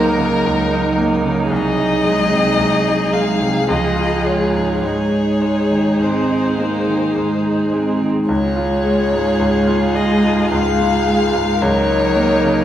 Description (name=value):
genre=classical, slow romantic movement for piano quintet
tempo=53 BPM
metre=3/4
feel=uneven beats, rubato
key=Db major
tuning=A4 = 441 Hz
part: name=warm violin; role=melody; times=0.0-12.6 s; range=Bb4 to F5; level=-21 LUFS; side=left 3 dB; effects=none
part: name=rich cello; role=second line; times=0.0-12.6 s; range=F3 to C4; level=-20 LUFS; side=right 2 dB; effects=none
part: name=rich violin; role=second line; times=0.0-12.6 s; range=Ab4 to Bb4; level=-24 LUFS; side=left 2 dB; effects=none
part: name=bright grand piano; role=accompaniment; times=0.0-12.6 s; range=C2 to F4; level=-19 LUFS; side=left 1 dB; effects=none
part: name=warm viola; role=accompaniment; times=0.0-12.6 s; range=Eb4 to F4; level=-22 LUFS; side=right 3 dB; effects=none
room=wet recital hall reverb, RT60 1.3 s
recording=heard from further back in the room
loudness=-14 LUFS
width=side -11 dB against mid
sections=0.0-12.6 A section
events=none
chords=0.0 Ebm7/Db; 1.5 Ab7/C; 3.7 Db; 4.8 Ab; 8.3 Db; 11.6 Ebm7/Db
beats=0.44 | 1.51 2.58 3.69 | 4.83 6.00 7.17 | 8.30 9.41 10.53 | 11.62